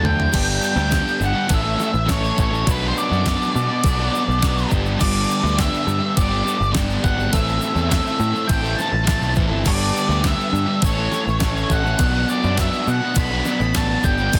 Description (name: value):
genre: indie rock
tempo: 103 BPM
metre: 4/4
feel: straight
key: G major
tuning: A4 = 441 Hz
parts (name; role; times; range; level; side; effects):
- octave-fuzz lead guitar; melody; 0.0-14.4 s; B4 to B5; -26 LUFS; equal; distortion
- overdriven electric guitar; riff; 0.0-14.4 s; G2 to A4; -28 LUFS; equal; none
- raw garage guitar; riff; 0.0-14.4 s; G2 to G4; -28 LUFS; equal; overdrive, lush chorus
- picked electric bass; bass; 0.0-14.4 s; G1 to B2; -24 LUFS; equal; none
- crisp 8-bit digital drum machine; drums; 0.0-14.4 s; crash cymbal, kick drum, ride cymbal, snare drum, toms; -25 LUFS; equal; overdrive
- tube shaker; percussion; 0.3-14.4 s; none; -40 LUFS; equal; none
room: light reverb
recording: dense, heavily limited modern master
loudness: -19 LUFS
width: mono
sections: 0.3-14.4 A section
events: drum fill 0.0-0.3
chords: 0.3 G; 1.5 A; 2.7 Bm; 4.7 G; 7.3 Am; 9.7 G; 10.8 A; 12.0 Bm